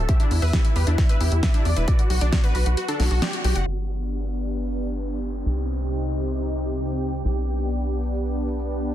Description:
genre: uplifting trance.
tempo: 134 BPM.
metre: 4/4.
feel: straight.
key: G major.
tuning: A4 = 439 Hz.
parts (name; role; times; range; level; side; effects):
big supersaw lead; melody; 0.0-3.7 s; E4 to E5; -30 LUFS; equal; sidechain pumping, low-pass filter, dub echo.
tight sequencer bass; bass; 0.0-8.9 s; E1 to E2; -24 LUFS; equal; sidechain pumping.
wide unison pluck; arpeggios; 0.1-3.6 s; D4 to F#5; -32 LUFS; left 2 dB; sidechain pumping, dub echo.
big-room dance drum kit; drums; 0.1-8.8 s; hi-hat, snare drum, tambourine; -29 LUFS; equal; soft clipping on snare, low-pass filter on snare, low-pass filter on hats, low-pass filter on perc.
electronic kick drum; drums; 0.1-2.4 s; none; -20 LUFS; equal; none.
lush unison pad; sustained chords; 3.7-8.9 s; C3 to G4; -28 LUFS; equal; chorus, sidechain pumping.
downlifter; sound effects; 3.8-7.3 s; none; -44 LUFS; equal; none.
room: light reverb, digital ambience.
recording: dense, heavily limited modern master, low-pass filter.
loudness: -21 LUFS.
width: side -12 dB against mid.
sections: 0.0-3.7 A section; 3.7-8.9 B section.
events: break 2.8-3.7; band accent 3.2; filter sweep on drum 3.7-8.9; filter sweep 3.7-8.9.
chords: 0.1 Em; 1.9 Bm; 3.7 G; 5.5 Cm; 7.3 G/B.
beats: | 0.09 0.53 0.98 1.43 | 1.88 2.33 2.77 3.22 | 3.67 4.12 4.56 5.01 | 5.46 5.91 6.36 6.80 | 7.25 7.70 8.15 8.59.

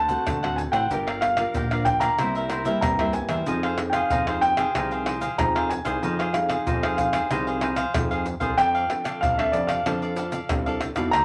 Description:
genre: samba and choro.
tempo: 94 BPM.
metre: 4/4.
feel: straight.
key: F minor.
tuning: A4 = 440 Hz.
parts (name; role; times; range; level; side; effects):
warm concert grand piano; melody; 0.0-11.2 s; D5 to Bb5; -27 LUFS; equal; none.
cavaquinho; accompaniment; 0.0-11.2 s; D4 to F#5; -31 LUFS; equal; none.
nylon-string guitar; accompaniment; 0.0-11.2 s; G2 to Bb4; -34 LUFS; equal; none.
fat analog bass; bass; 0.0-11.2 s; G1 to F2; -32 LUFS; equal; none.
tube shaker, pandeiro, surdo and tamborim; percussion; 0.1-11.2 s; none; -32 LUFS; equal; none.
room: wet small room reverb, RT60 0.5 s.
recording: none.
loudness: -24 LUFS.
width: mono.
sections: 0.0-8.6 A section; 8.6-11.2 B section.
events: drum fill 7.8-8.6.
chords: 0.0 D7; 0.9 Gm7; 2.2 C7; 3.5 Fm7; 8.6 F6.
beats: 0.27 | 0.91 1.55 2.19 2.83 | 3.47 4.11 4.75 5.39 | 6.03 6.67 7.30 7.94 | 8.58 9.22 9.86 10.50 | 11.14.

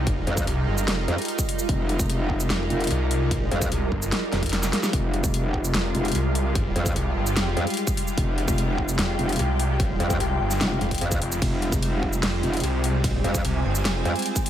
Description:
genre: heavy wobble dubstep.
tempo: 148 BPM.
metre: 4/4.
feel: half-time.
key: F minor.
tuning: A4 = 436 Hz.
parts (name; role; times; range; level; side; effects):
lush unison pad; sustained chords; 0.0-14.5 s; G3 to F4; -30 LUFS; equal; chorus, sidechain pumping.
snarling distorted saw bass; bass; 0.0-14.0 s; F1 to C2; -25 LUFS; equal; overdrive.
ethereal airy pad; texture; 0.0-14.5 s; F4 to Ab5; -31 LUFS; right 1 dB; ensemble chorus, built-in reverb, phaser, sidechain pumping.
dubstep drum kit; drums; 0.1-14.5 s; hi-hat, ride cymbal, shaker, snare drum; -28 LUFS; equal; studio reverb.
electronic kick drum; drums; 0.1-14.4 s; none; -27 LUFS; equal; studio reverb.
metallic wobble bass; bass; 0.3-14.1 s; F1 to F2; -25 LUFS; equal; chorus, overdrive.
room: little or no reverb.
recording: none.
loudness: -21 LUFS.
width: side -11 dB against mid.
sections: 0.0-14.5 A section.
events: drum fill 4.3-4.9; kick drops out 4.5-4.9.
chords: 0.0 Fmadd9.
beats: | 0.07 0.47 0.88 1.28 | 1.69 2.10 2.50 2.91 | 3.31 3.72 4.12 4.53 | 4.93 5.34 5.74 6.15 | 6.55 6.96 7.37 7.77 | 8.18 8.58 8.99 9.39 | 9.80 10.20 10.61 11.01 | 11.42 11.82 12.23 12.63 | 13.04 13.45 13.85 14.26.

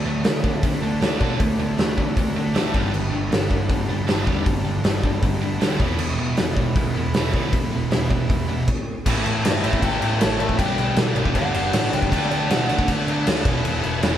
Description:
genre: punk rock.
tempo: 157 BPM.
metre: 4/4.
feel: straight.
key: unclear.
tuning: A4 = 440 Hz.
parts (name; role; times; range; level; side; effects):
distorted electric guitar; riff; 0.0-14.2 s; G2 to E4; -30 LUFS; equal; overdrive.
sludgy distorted guitar; riff; 0.0-14.2 s; E2 to D4; -26 LUFS; right 6 dB; overdrive.
tight distorted guitar; riff; 0.0-14.2 s; E2 to D4; -30 LUFS; left 6 dB; distortion.
overdriven picked electric bass; bass; 0.0-14.2 s; E1 to D3; -27 LUFS; equal; none.
big rock drum kit; drums; 0.2-14.1 s; crash cymbal, hi-hat, kick drum, snare drum; -22 LUFS; equal; none.
raw garage guitar; melody; 9.5-12.9 s; C5 to A5; -26 LUFS; left 1 dB; overdrive.
room: light reverb.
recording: band playing live in one room.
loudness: -19 LUFS.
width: side -10 dB against mid.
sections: 0.0-9.1 A section; 9.1-14.2 B section.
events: stop 8.7-9.1; overdriven electric guitar solo 9.1-14.2.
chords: 0.0 D; 2.7 G; 5.8 E; 9.1 A; 10.6 G/B; 12.1 D; 13.5 E.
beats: 0.25 0.64 1.02 | 1.40 1.79 2.17 2.55 | 2.94 3.32 3.70 4.08 | 4.47 4.85 5.23 5.62 | 6.00 6.38 6.76 7.15 | 7.53 7.91 8.29 8.68 | 9.06 9.44 9.82 10.21 | 10.59 10.97 11.35 11.73 | 12.12 12.50 12.88 13.26 | 13.65 14.03.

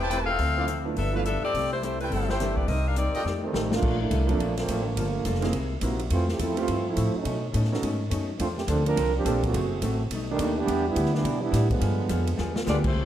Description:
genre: jazz, big band swing.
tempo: 210 BPM.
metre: 4/4.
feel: swing 62% on 8ths.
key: unclear.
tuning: A4 = 442 Hz.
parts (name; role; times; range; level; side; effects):
warm saxophone section; melody; 0.0-3.4, 12.7-13.1 s; G3 to G5; -28 LUFS; left 3 dB; none.
archtop guitar, miked and amplified; accompaniment; 0.0-13.1 s; F#2 to C5; -34 LUFS; left 3 dB; none.
clear trumpet section; stabs; 0.0-3.2 s; E4 to A5; -34 LUFS; right 3 dB; none.
upright bass; bass; 0.0-13.1 s; E1 to B2; -28 LUFS; equal; none.
swinging big-band drum kit; drums; 0.1-12.9 s; crash cymbal, hi-hat, kick drum, ride cymbal, snare drum; -33 LUFS; equal; none.
clear grand piano; accompaniment; 0.6-12.8 s; E3 to A4; -33 LUFS; right 4 dB; none.
clear trombone section; second line; 3.4-12.6 s; D3 to Bb4; -28 LUFS; right 4 dB; none.
room: moderate recital hall reverb, RT60 1.4 s.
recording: dark, warm production.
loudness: -23 LUFS.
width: side -11 dB against mid.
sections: 0.0-3.8 A section; 3.8-12.9 B section.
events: drum fill 3.3-3.8, 12.4; trombone section solo 3.8-12.9; band accent 12.8.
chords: 0.4 Dm9; 1.0 G13; 1.5 C6; 2.7 Cm7; 3.3 F9; 3.8 Bbmaj7; 5.0 Gm9; 5.5 C7alt; 6.1 Fmaj7; 7.3 B9; 8.4 Bbmaj9; 9.5 F#m7b5; 10.1 B7alt; 10.7 G7b9.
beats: 0.11 | 0.40 0.68 0.97 1.25 | 1.54 1.83 2.11 2.40 | 2.68 2.97 3.25 3.54 | 3.83 4.11 4.40 4.68 | 4.97 5.25 5.54 5.83 | 6.11 6.40 6.68 6.97 | 7.25 7.54 7.82 8.11 | 8.39 8.68 8.96 9.25 | 9.53 9.82 10.10 10.39 | 10.67 10.96 11.24 11.53 | 11.81 12.09 12.38 12.66 | 12.95.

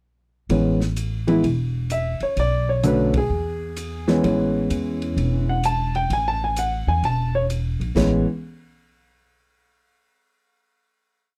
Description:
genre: jazz piano trio.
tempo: 129 BPM.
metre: 4/4.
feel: swing 66% on 8ths.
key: A major.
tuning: A4 = 437 Hz.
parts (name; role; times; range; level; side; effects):
warm grand piano; melody; 0.5-8.2 s; D3 to A5; -24 LUFS; equal; none.
upright bass; bass; 0.5-8.2 s; E1 to E2; -26 LUFS; equal; none.
open jazz drum kit; drums; 0.5-8.1 s; crash cymbal, hi-hat, kick drum, ride cymbal, snare drum; -36 LUFS; equal; none.
room: little or no reverb.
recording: dry, close 1970s-style studio recording.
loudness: -22 LUFS.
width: mono.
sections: 0.5-8.0 A section; 8.0-9.8 final chord.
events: band accent 3.1.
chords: 0.5 Amaj7; 2.4 Bm7; 3.3 E; 4.2 Amaj7; 8.0 A.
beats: | 0.50 0.97 1.44 1.90 | 2.37 2.83 3.30 3.77 | 4.23 4.70 5.16 5.63 | 6.09 6.56 7.02 7.49 | 7.95.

